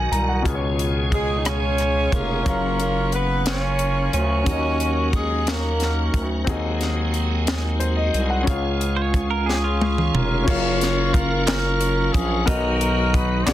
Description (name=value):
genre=slow gospel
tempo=60 BPM (dotted quarters)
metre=6/8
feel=straight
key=F# major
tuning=A4 = 440 Hz
part: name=clear grand piano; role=accompaniment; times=0.0-13.5 s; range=B2 to A#5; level=-27 LUFS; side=left 3 dB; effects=none
part: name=tonewheel organ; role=sustained chords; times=0.0-13.5 s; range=C#3 to A#4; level=-28 LUFS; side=right 3 dB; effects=chorus vibrato, slow rotary speaker
part: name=growling FM bass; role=bass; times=0.0-13.5 s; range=E#1 to D#2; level=-24 LUFS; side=equal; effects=none
part: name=tight funk drum kit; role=drums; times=0.1-13.5 s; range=crash cymbal, hi-hat, kick drum, rim click, snare drum, toms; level=-23 LUFS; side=equal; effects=soft clipping on snare
part: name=breathy tenor saxophone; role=melody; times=1.1-6.2 s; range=G#3 to D#4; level=-27 LUFS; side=right 5 dB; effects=none
part: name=warm horn section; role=melody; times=1.1-6.4, 9.5-13.5 s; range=C#4 to D5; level=-25 LUFS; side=left 2 dB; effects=none
part: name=semi-hollow electric guitar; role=second line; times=9.0-10.4 s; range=E#4 to C#5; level=-27 LUFS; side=right 8 dB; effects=none
part: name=group handclap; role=percussion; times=11.5-13.5 s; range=none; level=-30 LUFS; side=right 8 dB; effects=none
room=light reverb, small room ambience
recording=dense, heavily limited modern master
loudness=-19 LUFS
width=side -13 dB against mid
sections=0.0-10.5 A section; 10.5-13.5 B section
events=drum fill 9.5-10.5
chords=0.5 C#7; 2.5 F#maj7; 4.5 D#m7; 6.5 G#7/D#; 8.5 C#; 10.5 F#maj7; 12.5 Bmaj7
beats=| 0.45 1.46 | 2.46 3.46 | 4.47 5.47 | 6.47 7.48 | 8.48 9.48 | 10.48 11.48 | 12.48 13.48